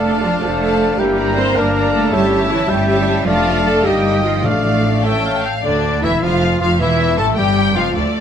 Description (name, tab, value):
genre	classical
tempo	105 BPM (dotted quarters)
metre	6/8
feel	straight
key	D minor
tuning	A4 = 440 Hz
part	rich studio violin section	melody	0.0-8.2 s	D5 to Bb5	-23 LUFS	left 4 dB	none
part	clear oboe	second line	0.0-7.9 s	D4 to G5	-25 LUFS	right 1 dB	none
part	silver concert flute	second line	0.0-7.9 s	D5 to Bb5	-26 LUFS	left 2 dB	none
part	warm clarinet	second line	0.0-7.9 s	D4 to E5	-25 LUFS	left 1 dB	none
part	warm symphonic violin section	second line	0.0-8.2 s	D4 to F5	-26 LUFS	left 3 dB	none
part	rich symphonic viola section	accompaniment	0.0-8.2 s	D3 to C5	-20 LUFS	equal	none
part	warm bassoon	accompaniment	0.0-7.9 s	D3 to E4	-25 LUFS	right 1 dB	none
part	mellow French horn section	sustained chords	0.0-7.9 s	D3 to Eb4	-23 LUFS	left 5 dB	none
part	clear symphonic cello section	bass	0.0-8.0 s	D2 to C4	-22 LUFS	right 4 dB	none
part	rich studio double bass section	bass	0.0-8.0 s	E1 to D2	-22 LUFS	right 2 dB	none
part	timpani	percussion	4.4-5.0 s	A2	-25 LUFS	left 1 dB	none
room	moderate scoring stage reverb, RT60 1.7 s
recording	none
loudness	-13 LUFS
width	side -8 dB against mid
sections	0.0-5.6 A section; 5.6-8.2 B section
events	none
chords	0.0 Dm/F; 1.0 Gm; 2.1 A7/G; 3.3 Dm/F; 3.8 Eb/G; 4.4 Dm/A; 5.0 A; 5.6 Dm; 6.8 A5/E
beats	0.42 | 0.99 1.56 | 2.12 2.69 | 3.27 3.85 | 4.45 5.05 | 5.64 6.23 | 6.80 7.37 | 7.95